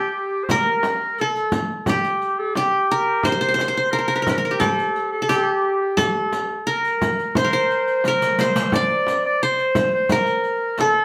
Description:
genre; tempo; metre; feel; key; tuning
Turkish makam ensemble; 88 BPM; 4/4; straight; G makam huseyni; A4 = 440 Hz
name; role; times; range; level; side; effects
qanun; melody; 0.0-11.0 s; G4 to D5; -22 LUFS; equal; none
bright clarinet; second line; 0.0-11.0 s; G4 to D5; -27 LUFS; equal; none
frame drum; percussion; 0.5-10.9 s; none; -28 LUFS; equal; none
riq; percussion; 0.5-10.9 s; none; -31 LUFS; equal; none
room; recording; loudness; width
wet studio reverb, RT60 0.7 s; band playing live in one room; -20 LUFS; mono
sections
0.0-11.0 A section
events
drum fill 8.0-8.7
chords
none

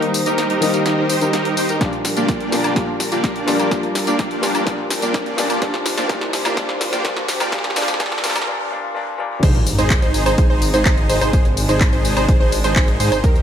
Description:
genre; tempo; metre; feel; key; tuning
EDM, festival progressive house; 126 BPM; 4/4; straight; unclear; A4 = 438 Hz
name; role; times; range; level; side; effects
warm grand piano; accompaniment; 0.0-9.4 s; Bb2 to Eb4; -23 LUFS; left 2 dB; sidechain pumping, digital delay
muted studio string section; sustained chords; 0.0-13.4 s; C3 to C5; -27 LUFS; equal; sidechain pumping
dense compressed supersaw; riff; 0.0-13.4 s; Bb3 to D5; -22 LUFS; right 1 dB; sidechain pumping, low-pass filter, digital delay
house drum kit; drums; 0.0-13.4 s; crash cymbal, handclaps, hi-hat, snare drum, tambourine, woodblock; -23 LUFS; left 1 dB; high-pass filter on hats, high-pass filter on perc, high-pass filter on snare, high-pass filter on cymbals
electronic kick drum; drums; 1.8-13.3 s; none; -17 LUFS; equal; none
riser and sub drop; sound effects; 4.8-11.3 s; none; -29 LUFS; right 1 dB; none
wide unison pluck; arpeggios; 9.4-13.4 s; Bb4 to C5; -22 LUFS; right 2 dB; vintage 12-bit sampler grit, sidechain pumping, digital delay
detuned saw bass; bass; 9.4-13.4 s; Ab1 to Ab2; -21 LUFS; equal; sidechain pumping
room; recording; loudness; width
moderate digital room reverb, RT60 1.3 s; high-pass filter; -16 LUFS; side -9 dB against mid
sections
0.0-9.4 A section; 9.4-13.4 B section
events
build-up 0.0-9.4; drum fill 0.0-8.5; filter sweep on supersaw synth 0.0-9.4; break 8.5-9.4; drop 9.4-13.4; impact 9.4-11.3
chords
0.0 Eb; 1.8 Bb6; 5.6 Cmadd9; 9.4 Ab

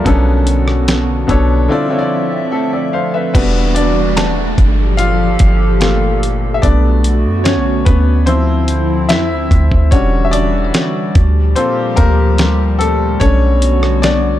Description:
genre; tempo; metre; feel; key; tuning
contemporary R&B; 73 BPM; 4/4; straight; unclear; A4 = 440 Hz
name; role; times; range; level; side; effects
clear baby grand piano; accompaniment; 0.0-14.4 s; B2 to F5; -16 LUFS; left 3 dB; none
hollow soft pad; sustained chords; 0.0-14.4 s; Bb2 to E5; -19 LUFS; right 1 dB; chorus
mallet-like synth pluck; texture; 0.0-4.9, 10.3-11.5 s; A5 to A6; -29 LUFS; equal; none
soft 808-style bass; bass; 0.1-14.4 s; E1 to F#2; -14 LUFS; equal; none
dusty soul sampler-style drum kit; drums; 0.1-14.2 s; crash cymbal, hi-hat, kick drum, rim click, snare drum; -15 LUFS; equal; none
downlifter; sound effects; 3.4-9.9 s; none; -26 LUFS; equal; none
room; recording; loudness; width
little or no reverb; dark, warm production; -11 LUFS; side -13 dB against mid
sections
0.0-3.3 A section; 3.3-14.4 B section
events
break 1.7-3.3; grand piano solo 3.3-14.4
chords
0.1 Bm9; 1.7 Dm9; 3.3 Em9; 4.6 Gm9; 6.6 Bm9; 8.3 Dm9; 9.9 Em9; 11.2 Gm9; 13.2 Bm9

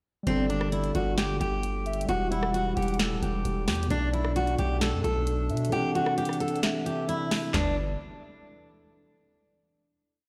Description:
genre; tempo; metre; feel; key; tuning
hip hop, trap; 132 BPM; 4/4; half-time; G major; A4 = 439 Hz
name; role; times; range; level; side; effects
overdriven tine electric piano; accompaniment; 0.2-7.8 s; B2 to B4; -36 LUFS; equal; none
fingerpicked steel-string acoustic guitar; melody; 0.3-7.8 s; C4 to A4; -33 LUFS; equal; delay
hollow clarinet-like synth lead; second line; 0.3-7.8 s; D5 to F#5; -38 LUFS; equal; chorus, delay
hollow soft pad; sustained chords; 0.3-7.8 s; B2 to F#5; -40 LUFS; equal; none
distorted 808-style bass; bass; 0.3-8.0 s; D1 to B2; -32 LUFS; equal; distortion
trap drum kit; drums; 0.3-7.6 s; handclaps, hi-hat, rim click, snare drum, toms; -34 LUFS; equal; none
room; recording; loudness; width
light reverb; played on a big sound system in a bare room, stone room reverb; -28 LUFS; mono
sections
0.3-7.5 hook; 7.5-9.4 final chord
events
kick muted 5.7-7.5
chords
0.3 Gsus2; 2.1 Emadd9; 3.9 Bm7; 5.7 Cadd9; 7.5 G

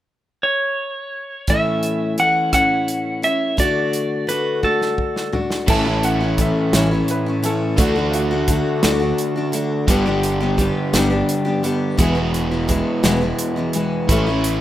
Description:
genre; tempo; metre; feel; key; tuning
folk rock and heartland rock; 57 BPM (dotted quarters); 6/8; straight; A major; A4 = 439 Hz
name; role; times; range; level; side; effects
clean lap steel guitar; melody; 0.4-5.4 s; A4 to F#5; -19 LUFS; right 1 dB; none
picked steel-string acoustic guitar; accompaniment; 1.5-14.6 s; E2 to G4; -20 LUFS; left 2 dB; none
natural country drum kit; drums; 1.5-14.6 s; crash cymbal, hi-hat, kick drum, rim click, snare drum, toms; -21 LUFS; right 1 dB; none
clear upright piano; second line; 5.7-8.8 s; F4 to A5; -27 LUFS; right 2 dB; none
crunchy overdriven guitar; riff; 5.7-14.6 s; E2 to G#4; -22 LUFS; right 2 dB; none
fingered electric bass; bass; 5.7-14.6 s; E1 to D2; -22 LUFS; right 1 dB; none
room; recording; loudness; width
light reverb, studio ambience; rough home demo mix; -16 LUFS; side -13 dB against mid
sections
0.0-1.5 A section; 1.5-5.7 B section; 5.7-14.6 C section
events
drum fill 4.6-5.7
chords
0.0 N.C.; 1.5 A; 3.6 D; 5.7 A; 7.8 D; 9.9 G; 12.0 E; 14.1 A

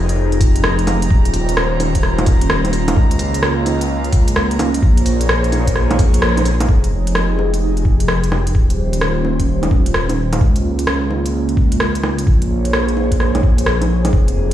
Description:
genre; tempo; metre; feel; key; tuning
future garage; 129 BPM; 4/4; swing 65% on 16ths; F minor; A4 = 440 Hz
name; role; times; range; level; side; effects
airy breathy pad; sustained chords; 0.0-14.5 s; Db3 to Db5; -21 LUFS; equal; chorus, phaser, vintage 12-bit sampler grit, sidechain pumping
swelling detuned saw bass; bass; 0.0-14.5 s; Eb1 to Db2; -18 LUFS; equal; sidechain pumping
drifting glass-harmonics texture; texture; 0.0-6.7 s; Bb5; -29 LUFS; right 2 dB; chorus, built-in reverb
organic electronic drum kit; drums; 0.1-14.5 s; bongos, hi-hat, rim click; -20 LUFS; right 1 dB; none
electronic kick drum; drums; 0.4-14.2 s; none; -14 LUFS; equal; none
room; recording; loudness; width
light reverb, digital ambience; played on a big sound system in a bare room, large studio reverb; -13 LUFS; side -12 dB against mid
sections
0.0-6.7 A section; 6.7-14.5 B section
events
band accent 6.2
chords
0.0 Fm9; 1.1 Eb13; 3.0 Db6; 4.8 Bbm9; 6.7 Fm9; 8.5 Eb13; 10.4 Db6; 12.3 Bbm9

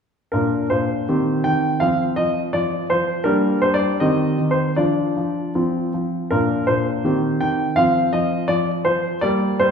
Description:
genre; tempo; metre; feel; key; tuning
classical-period piano sonatina; 81 BPM; 2/4; rubato; unclear; A4 = 436 Hz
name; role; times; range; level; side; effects
clear grand piano; solo; 0.3-9.7 s; Bb2 to G5; -17 LUFS; equal; none
room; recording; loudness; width
wet recital hall reverb, RT60 1.5 s; heard from further back in the room; -18 LUFS; side -6 dB against mid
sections
0.3-9.7 A section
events
none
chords
0.3 Bb; 1.1 Cm/Eb; 1.8 F5; 3.3 Gm; 4.0 Cm/Eb; 4.8 Dm/F; 5.5 F5; 6.3 Bb; 7.0 Cm/Eb; 7.8 F5

